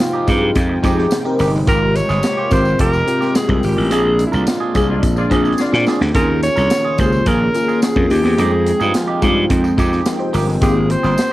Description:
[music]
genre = polished 1980s jazz-funk pop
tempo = 107 BPM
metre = 4/4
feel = straight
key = Ab major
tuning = A4 = 441 Hz
[part]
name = breathy alto saxophone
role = melody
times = 0.0-11.3 s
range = Fb4 to Db5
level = -20 LUFS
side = equal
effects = cassette tape
[part]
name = FM electric piano with soft pad layer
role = accompaniment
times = 0.0-11.3 s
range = C3 to G5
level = -20 LUFS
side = left 2 dB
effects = tremolo, ensemble chorus, cassette tape
[part]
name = chorused pulse-width pad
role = sustained chords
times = 0.0-11.3 s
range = C3 to G5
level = -25 LUFS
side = right 1 dB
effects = cassette tape
[part]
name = clean electric guitar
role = riff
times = 0.0-11.2 s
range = Ab3 to Bb4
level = -25 LUFS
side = right 5 dB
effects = wide subtle chorus, cassette tape
[part]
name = modern studio drum kit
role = drums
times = 0.0-11.3 s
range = hi-hat, kick drum, snare drum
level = -20 LUFS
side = equal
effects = cassette tape
[part]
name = gritty slap bass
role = bass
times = 0.3-11.1 s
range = F1 to Bb2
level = -17 LUFS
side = equal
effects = overdrive
[part]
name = tambourine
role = percussion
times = 0.3-11.3 s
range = none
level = -36 LUFS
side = left 4 dB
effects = none
[part]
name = mellow horn section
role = second line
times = 4.9-6.0 s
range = F4 to D5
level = -25 LUFS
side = left 1 dB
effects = cassette tape
[sound]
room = light reverb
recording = home recording on cassette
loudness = -13 LUFS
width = side -16 dB against mid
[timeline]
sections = 0.0-11.3 A section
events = band accent 3.9-6.1; drum fill 5.6-6.1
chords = 0.0 Fm9; 1.7 Abmaj13; 3.9 Bb9; 6.1 Eb9sus4; 8.4 Fm9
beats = 0.00 0.56 1.12 | 1.68 2.23 2.79 3.35 | 3.91 4.47 5.03 5.59 | 6.15 6.71 7.27 7.83 | 8.38 8.94 9.50 10.06 | 10.62 11.18

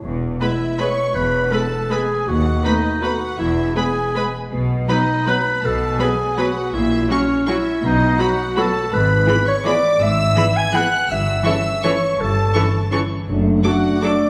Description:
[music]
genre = classical, orchestral ballroom waltz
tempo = 163 BPM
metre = 3/4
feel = uneven beats, rubato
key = E major, A major from 8.9 s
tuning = A4 = 441 Hz
[part]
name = warm clarinet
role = second line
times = 0.0-14.3 s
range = C#4 to G#5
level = -22 LUFS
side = equal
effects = none
[part]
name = clear symphonic cello section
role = bass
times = 0.0-13.6 s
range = D#2 to B2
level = -27 LUFS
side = equal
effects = none
[part]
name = warm symphonic double bass section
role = bass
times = 0.0-13.6 s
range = E1 to D#2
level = -26 LUFS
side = equal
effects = none
[part]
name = rich studio violin section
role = melody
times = 0.4-14.1 s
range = B5 to D6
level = -32 LUFS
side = equal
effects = none
[part]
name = clear symphonic violin section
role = second line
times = 0.4-14.3 s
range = C#5 to G#6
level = -30 LUFS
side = equal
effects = none
[part]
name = rich symphonic viola section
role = accompaniment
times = 0.4-14.1 s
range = E3 to B4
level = -27 LUFS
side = equal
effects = none
[part]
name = mellow French horn section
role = sustained chords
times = 0.4-14.3 s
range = E3 to D4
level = -28 LUFS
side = equal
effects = none
[sound]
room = wet scoring stage reverb, RT60 1.5 s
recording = recorded in a church or concert hall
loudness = -18 LUFS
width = mono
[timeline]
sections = 0.0-14.3 A section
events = none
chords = 0.0 E; 2.3 B7/D#; 3.4 E; 4.5 B; 6.7 F#7/A#; 7.8 B; 8.9 E/G#; 11.1 A7/G; 13.3 D/F#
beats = | 0.03 0.41 0.79 | 1.15 1.52 1.92 | 2.28 2.65 3.04 | 3.40 3.77 4.16 | 4.53 4.89 5.28 | 5.64 6.01 6.39 | 6.75 7.11 7.48 | 7.84 8.20 8.57 | 8.92 9.28 9.65 | 10.00 10.36 10.74 | 11.10 11.46 11.84 | 12.19 12.55 12.92 | 13.28 13.64 14.03

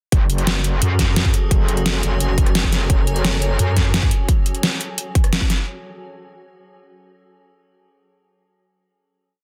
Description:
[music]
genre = dark technical drum and bass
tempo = 173 BPM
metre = 4/4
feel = straight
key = F# minor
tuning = A4 = 440 Hz
[part]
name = metallic inharmonic drone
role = sustained chords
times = 0.7-4.2 s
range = F#3 to A4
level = -34 LUFS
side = equal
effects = chorus, built-in reverb, sidechain pumping
[part]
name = metallic wobble bass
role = bass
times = 0.1-4.1 s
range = F#1 to F#2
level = -22 LUFS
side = equal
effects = distortion, chorus, overdrive, sidechain pumping
[part]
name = dubstep drum kit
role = drums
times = 0.1-5.6 s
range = hi-hat, rim click, snare drum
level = -24 LUFS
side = equal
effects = overdrive
[part]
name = electronic kick drum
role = drums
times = 0.1-5.5 s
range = none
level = -20 LUFS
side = equal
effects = overdrive
[part]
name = granular cloud pad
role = texture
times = 1.4-4.3 s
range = F#4 to G#5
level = -34 LUFS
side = equal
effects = built-in reverb, sidechain pumping
[sound]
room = little or no reverb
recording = dense, heavily limited modern master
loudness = -18 LUFS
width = mono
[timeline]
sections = 0.1-5.7 drop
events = drop 0.1-5.7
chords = 0.1 F#madd9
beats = | 0.12 0.47 0.82 1.16 | 1.51 1.86 2.20 2.55 | 2.90 3.25 3.59 3.94 | 4.29 4.63 4.98 5.33

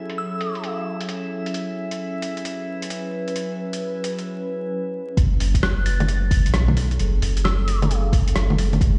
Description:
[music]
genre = future garage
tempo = 132 BPM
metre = 4/4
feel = swing 64% on 16ths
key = F# minor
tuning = A4 = 440 Hz
[part]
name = warbly tape-like pad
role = sustained chords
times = 0.0-9.0 s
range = F#3 to B4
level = -31 LUFS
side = equal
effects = chorus, built-in reverb, vintage 12-bit sampler grit, sidechain pumping
[part]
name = drifting glass-harmonics texture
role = texture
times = 0.0-4.3 s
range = E4 to E5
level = -36 LUFS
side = equal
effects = chorus, built-in reverb
[part]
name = lo-fi sampler-style drum kit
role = drums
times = 0.1-8.9 s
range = bongos, hi-hat, rim click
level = -29 LUFS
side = equal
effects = overdrive, low-pass filter on hats, low-pass filter on snare, low-pass filter on perc
[part]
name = glassy synth bell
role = melody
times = 0.2-0.6, 5.6-7.8 s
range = E6 to A6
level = -33 LUFS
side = equal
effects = chorus, digital delay
[part]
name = warm sub bass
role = bass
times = 5.2-9.0 s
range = F#1 to B1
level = -23 LUFS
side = equal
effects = sidechain pumping
[part]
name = electronic kick drum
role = drums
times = 5.2-8.9 s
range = none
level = -21 LUFS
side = equal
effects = none
[sound]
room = light reverb, digital ambience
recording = played on a big sound system in a bare room, large studio reverb, vinyl crackle, nothing above 10.5 kHz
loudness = -23 LUFS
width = mono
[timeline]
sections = 0.0-5.2 A section; 5.2-9.0 B section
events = none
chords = 0.0 F#m9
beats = 0.18 0.63 1.08 | 1.54 1.99 2.45 2.90 | 3.36 3.81 4.27 4.72 | 5.18 5.63 6.08 6.54 | 6.99 7.45 7.90 8.36 | 8.81

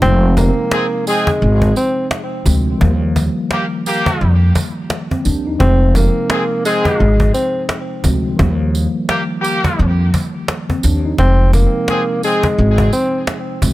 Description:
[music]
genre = hip hop, boom-bap hip-hop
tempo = 86 BPM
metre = 4/4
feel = swing 60% on 16ths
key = F dorian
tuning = A4 = 440 Hz
[part]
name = breathy tenor saxophone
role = melody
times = 0.0-13.2 s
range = Ab3 to C4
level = -18 LUFS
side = equal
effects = high-pass filter, low-pass filter, digital delay
[part]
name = mellow tine electric piano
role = accompaniment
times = 0.0-13.7 s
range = C3 to Eb4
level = -21 LUFS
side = equal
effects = medium stereo tremolo, cassette tape, high-pass filter, low-pass filter
[part]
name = upright bass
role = bass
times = 0.0-13.7 s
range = F1 to F2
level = -13 LUFS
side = equal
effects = none
[part]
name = cajon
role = drums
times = 0.0-13.7 s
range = none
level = -20 LUFS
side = equal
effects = none
[part]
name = tambourine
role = percussion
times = 0.4-13.7 s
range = none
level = -29 LUFS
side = right 6 dB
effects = none
[part]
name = bright trumpet section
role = stabs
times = 0.7-12.5 s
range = Bb3 to Ab4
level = -21 LUFS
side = equal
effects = high-pass filter, low-pass filter, digital delay
[sound]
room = studio reverb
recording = none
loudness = -13 LUFS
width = side -16 dB against mid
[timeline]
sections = 0.0-13.7 A section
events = none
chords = 0.0 Fm; 2.8 Ebadd9; 5.6 Fm; 8.4 Ebadd9; 11.2 Fm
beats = | 0.02 0.72 1.42 2.11 | 2.81 3.51 4.21 4.90 | 5.60 6.30 7.00 7.69 | 8.39 9.09 9.79 10.48 | 11.18 11.88 12.58 13.28

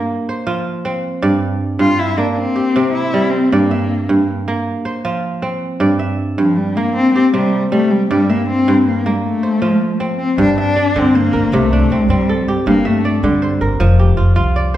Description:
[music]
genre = west african traditional, West African string and xylophone music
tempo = 105 BPM (dotted quarters)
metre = 12/8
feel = straight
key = G dorian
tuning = A4 = 440 Hz
[part]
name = dark cello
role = melody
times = 0.0-13.7 s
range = F3 to F4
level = -16 LUFS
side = left 2 dB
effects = none
[part]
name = kora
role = arpeggios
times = 0.0-14.8 s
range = G2 to E5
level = -16 LUFS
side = right 2 dB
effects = none
[part]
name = upright bass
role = bass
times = 10.4-14.8 s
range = F1 to G2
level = -16 LUFS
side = equal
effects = none
[sound]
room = wet recital hall reverb, RT60 1.3 s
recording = heard from further back in the room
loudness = -13 LUFS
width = side -12 dB against mid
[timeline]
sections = 0.0-10.4 A section; 10.4-14.8 B section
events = none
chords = 0.1 F5; 1.2 Gm; 2.4 C; 3.5 Gm; 4.7 F5; 5.8 Gm; 7.0 C5; 8.1 Gm; 9.2 F; 10.4 Gm; 11.5 C5; 12.7 Gm; 13.8 F5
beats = 0.08 0.66 | 1.23 1.80 2.37 2.94 | 3.52 4.09 4.66 5.24 | 5.81 6.38 6.96 7.53 | 8.10 8.67 9.24 9.81 | 10.38 10.95 11.52 12.09 | 12.66 13.23 13.80 14.37

